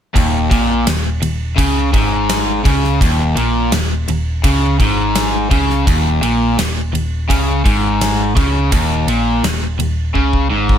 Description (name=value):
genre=classic rock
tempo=84 BPM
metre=4/4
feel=straight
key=unclear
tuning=A4 = 440 Hz
part: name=crunchy overdriven guitar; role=riff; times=0.1-10.8 s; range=Eb2 to Db3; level=-19 LUFS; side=left 9 dB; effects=none
part: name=overdriven electric guitar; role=riff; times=0.1-10.8 s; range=Eb2 to Db3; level=-19 LUFS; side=right 10 dB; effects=none
part: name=hollow-body short-scale picked electric bass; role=bass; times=0.2-10.8 s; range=Eb1 to Db2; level=-19 LUFS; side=equal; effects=none
part: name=gated 80s drum kit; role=drums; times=0.2-10.8 s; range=kick drum, ride cymbal, snare drum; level=-18 LUFS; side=equal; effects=none
room=little or no reverb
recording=none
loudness=-13 LUFS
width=side -9 dB against mid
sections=0.2-10.8 A section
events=drum fill 10.2-10.8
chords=0.2 Eb5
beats=| 0.15 0.87 1.58 2.29 | 3.01 3.72 4.44 5.15 | 5.86 6.58 7.29 8.01 | 8.72 9.44 10.15